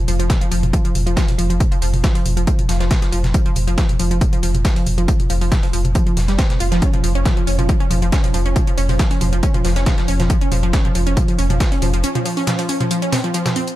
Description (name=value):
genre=driving peak-time techno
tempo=138 BPM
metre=4/4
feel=straight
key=unclear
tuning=A4 = 440 Hz
part: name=wide unison pluck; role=riff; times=0.1-13.7 s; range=F3 to F4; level=-21 LUFS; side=equal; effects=tube saturation, sidechain pumping, ping-pong delay
part: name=warm sub bass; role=bass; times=0.1-12.0 s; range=F1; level=-19 LUFS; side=equal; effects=tube saturation, sidechain pumping, low-pass filter
part: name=breakbeat sampler-style drum kit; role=drums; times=0.1-13.8 s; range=hi-hat, snare drum, tambourine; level=-29 LUFS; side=equal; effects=high-pass filter on snare, sidechain pumping on perc, high-pass filter on perc, sidechain pumping on hats, high-pass filter on hats
part: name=techno drum kit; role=drums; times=0.1-13.8 s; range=hi-hat, toms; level=-25 LUFS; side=right 1 dB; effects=overdrive
part: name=electronic kick drum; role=drums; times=0.3-11.7 s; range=none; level=-17 LUFS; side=equal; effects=overdrive
room=little or no reverb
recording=lossy compression artefacts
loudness=-15 LUFS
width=side -15 dB against mid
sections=0.0-13.8 A section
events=drop 0.0-13.8; break 12.0-13.8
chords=0.0 F5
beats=0.30 0.73 1.17 | 1.60 2.04 2.47 2.91 | 3.34 3.78 4.21 4.65 | 5.08 5.52 5.95 6.39 | 6.82 7.25 7.69 8.12 | 8.56 8.99 9.43 9.86 | 10.30 10.73 11.17 11.60 | 12.04 12.47 12.91 13.34